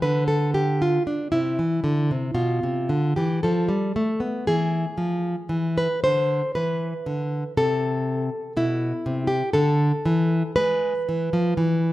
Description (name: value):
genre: classical, baroque-style dance for nylon-string guitar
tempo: 58 BPM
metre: 3/4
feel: rubato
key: unclear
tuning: A4 = 440 Hz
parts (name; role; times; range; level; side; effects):
- nylon-string guitar; solo; 0.0-11.9 s; B2 to C5; -21 LUFS; equal; slapback echo
room: light reverb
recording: none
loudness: -21 LUFS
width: side -16 dB against mid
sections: 0.0-11.9 A section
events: none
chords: 0.0 G9; 1.3 Dm13; 3.4 F; 4.5 E; 7.6 Am/C; 9.6 D5; 10.6 E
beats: 0.28 | 1.34 2.39 3.44 | 4.46 5.49 6.54 | 7.57 8.56 9.55 | 10.57 11.57